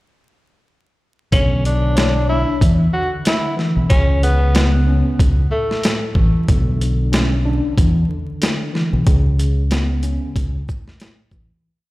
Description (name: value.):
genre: hip hop, boom-bap hip-hop.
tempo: 93 BPM.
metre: 4/4.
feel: swing 57% on 16ths.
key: unclear.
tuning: A4 = 440 Hz.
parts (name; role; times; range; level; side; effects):
breathy tenor saxophone; melody; 1.3-6.0 s; A3 to F#4; -22 LUFS; equal; high-pass filter, low-pass filter, tape echo.
mellow tine electric piano; accompaniment; 1.3-11.7 s; A2 to C#5; -23 LUFS; left 1 dB; medium stereo tremolo, high-pass filter, low-pass filter.
deep dub fingered electric bass; bass; 1.3-11.5 s; A1 to E2; -16 LUFS; equal; none.
boom bap sampler-style drum kit; drums; 1.3-11.5 s; hi-hat, kick drum, shaker, snare drum; -18 LUFS; equal; none.
room: digital ambience.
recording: played on a big sound system in a bare room, large studio reverb, vinyl crackle.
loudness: -14 LUFS.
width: side -19 dB against mid.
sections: 1.3-11.6 verse.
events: fade-out 9.1-11.6.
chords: 1.3 Bmadd9; 2.6 E5; 3.9 Bsus2/C#; 5.2 A; 6.5 Bmadd9; 7.8 E5; 9.1 Bsus2/C#; 10.4 A.